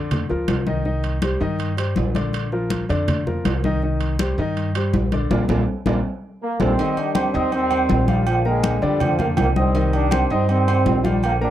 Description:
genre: latin, salsa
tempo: 162 BPM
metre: 4/4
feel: straight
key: C minor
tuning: A4 = 440 Hz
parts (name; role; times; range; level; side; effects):
- warm upright piano; accompaniment; 0.0-11.5 s; D3 to Eb6; -24 LUFS; left 2 dB; none
- upright bass; bass; 0.0-11.5 s; Bb1 to G2; -22 LUFS; equal; none
- congas; percussion; 0.1-11.5 s; none; -25 LUFS; left 2 dB; none
- timbales and agogo bells; percussion; 0.1-11.4 s; none; -26 LUFS; right 6 dB; none
- mellow trombone section; melody; 6.4-11.5 s; Bb2 to D4; -22 LUFS; right 1 dB; none
room: little or no reverb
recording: dry, close 1970s-style studio recording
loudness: -18 LUFS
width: side -12 dB against mid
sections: 0.0-6.8 A section; 6.8-11.5 B section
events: band accent 5.3-6.8; drum fill 5.7-6.8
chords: 0.0 Bb; 0.9 Cm; 2.3 Bb; 3.8 Cm; 5.3 Bb; 6.8 Cm; 8.3 Bb; 9.8 Cm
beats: 0.11 0.48 | 0.85 1.23 1.60 1.97 | 2.34 2.71 3.08 3.45 | 3.82 4.19 4.57 4.94 | 5.31 5.68 6.05 6.42 | 6.79 7.16 7.53 7.90 | 8.27 8.64 9.01 9.38 | 9.75 10.12 10.49 10.86 | 11.23

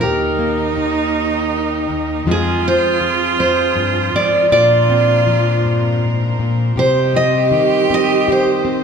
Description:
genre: acoustic folk-pop ballad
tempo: 53 BPM (dotted quarters)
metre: 6/8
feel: straight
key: Eb major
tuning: A4 = 439 Hz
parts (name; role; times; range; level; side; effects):
- picked steel-string acoustic guitar; melody; 0.0-8.8 s; Ab4 to Eb5; -16 LUFS; right 1 dB; none
- clear viola; second line; 0.0-8.8 s; Eb4 to G4; -19 LUFS; right 6 dB; none
- nylon-string guitar; accompaniment; 0.0-8.8 s; Eb2 to G4; -18 LUFS; left 2 dB; none
- warm chamber string section; sustained chords; 0.0-8.8 s; Eb3 to Eb5; -26 LUFS; equal; none
room: wet large studio reverb, RT60 1.5 s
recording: band playing live in one room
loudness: -13 LUFS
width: side -6 dB against mid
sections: 0.0-8.8 A section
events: none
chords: 0.0 Eb; 2.3 Fm; 4.5 Bbadd9; 6.8 Cm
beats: | 0.02 1.15 | 2.27 3.39 | 4.52 5.65 | 6.78 7.91

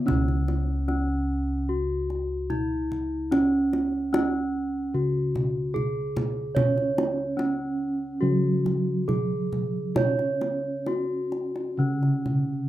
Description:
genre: Javanese gamelan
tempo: 73 BPM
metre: 4/4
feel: uneven beats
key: unclear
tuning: A4 = 439 Hz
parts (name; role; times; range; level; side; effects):
- gamelan-type bronze metallophone; melody; 0.0-12.7 s; C#4 to C#5; -28 LUFS; equal; none
- gamelan-type bronze metallophone; accompaniment; 0.0-0.1, 6.6-12.7 s; C#3 to C#4; -30 LUFS; right 2 dB; none
- gamelan-type bossed gongs; bass; 0.0-12.7 s; C#2 to C#5; -28 LUFS; equal; none
- kendang; percussion; 0.1-12.5 s; none; -29 LUFS; equal; none
room: little or no reverb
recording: rough home demo mix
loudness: -24 LUFS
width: side -14 dB against mid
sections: 0.1-12.7 A section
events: none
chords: none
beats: | 0.07 0.88 1.69 2.50 | 3.31 4.12 4.94 5.75 | 6.56 7.38 8.22 9.08 | 9.96 10.86 11.78

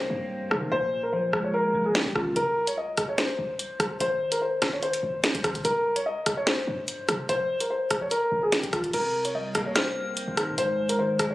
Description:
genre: hip hop, drill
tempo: 146 BPM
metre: 4/4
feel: half-time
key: C phrygian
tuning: A4 = 440 Hz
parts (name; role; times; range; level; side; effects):
- dark concert grand piano; melody; 0.0-11.3 s; F4 to Eb5; -26 LUFS; left 1 dB; ping-pong delay
- clean electric guitar; accompaniment; 0.0-2.4, 8.9-11.3 s; Ab2 to C4; -32 LUFS; right 1 dB; analog chorus
- short 808-style bass; bass; 0.0-11.3 s; Ab1 to Eb3; -38 LUFS; equal; none
- drill drum kit; drums; 0.5-11.3 s; crash cymbal, hi-hat, kick drum, rim click, snare drum; -27 LUFS; equal; none
- metallic FM bell; second line; 9.8-10.5 s; F6; -35 LUFS; left 2 dB; chorus, ping-pong delay
room: light reverb, digital ambience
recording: recorded on a phone in the room, club reverb, compression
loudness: -24 LUFS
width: side -17 dB against mid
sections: 0.0-8.9 A section; 8.9-11.3 B section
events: break 0.0-2.4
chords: 0.0 Cm7; 0.7 Bbm7; 2.4 N.C.; 4.0 Ab; 5.6 C5; 7.3 Bb7(no3); 8.9 Cm7; 10.6 Ab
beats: 0.30 | 0.72 1.13 1.54 1.95 | 2.36 2.77 3.18 3.59 | 4.00 4.42 4.83 5.24 | 5.65 6.06 6.47 6.88 | 7.29 7.70 8.11 8.52 | 8.94 9.35 9.76 10.17 | 10.58 10.99

